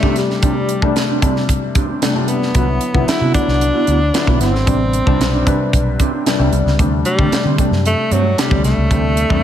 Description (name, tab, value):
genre	polished 1980s jazz-funk pop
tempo	113 BPM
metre	4/4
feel	straight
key	unclear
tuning	A4 = 440 Hz
part	breathy alto saxophone	melody	0.0-9.4 s	F#3 to E4	-19 LUFS	equal	ping-pong delay
part	warm baby grand piano	accompaniment	0.0-9.4 s	C3 to B4	-19 LUFS	left 4 dB	lush chorus
part	mellow electric guitar	riff	0.0-9.4 s	A3 to G4	-24 LUFS	right 7 dB	analog chorus
part	tight funk drum kit	drums	0.0-9.4 s	hi-hat, kick drum, snare drum	-18 LUFS	right 1 dB	gated reverb
part	vintage muted fingered electric bass	bass	2.5-9.4 s	G1 to D3	-17 LUFS	equal	none
room	light reverb, small room ambience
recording	none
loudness	-13 LUFS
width	side -10 dB against mid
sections	0.0-9.4 A section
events	none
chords	0.0 D7sus4; 2.6 Cmaj9#11; 4.7 Am11; 6.8 D7sus4